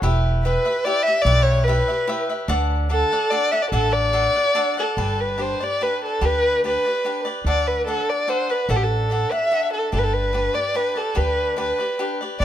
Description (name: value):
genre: mexican folk, mariachi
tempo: 146 BPM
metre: 3/4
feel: straight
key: D major, G major from 5.0 s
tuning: A4 = 439 Hz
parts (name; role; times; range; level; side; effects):
- cavaquinho; accompaniment; 0.0-12.4 s; D4 to F#5; -26 LUFS; left 1 dB; none
- upright bass; bass; 0.0-12.4 s; E1 to D2; -22 LUFS; equal; none
- dark violin; melody; 0.4-12.4 s; G4 to E5; -20 LUFS; equal; tape echo
room: light reverb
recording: close, detailed microphones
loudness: -18 LUFS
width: side -11 dB against mid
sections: 0.0-5.0 A section; 5.0-12.4 B section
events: none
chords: 0.0 Em; 2.5 D; 5.0 G; 7.5 D; 9.9 G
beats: | 0.02 0.44 0.85 | 1.26 1.67 2.08 | 2.49 2.90 3.32 | 3.73 4.14 4.56 | 4.98 5.39 5.80 | 6.22 6.63 7.04 | 7.46 7.87 8.28 | 8.69 9.10 9.52 | 9.93 10.35 10.76 | 11.17 11.58 11.99 | 12.40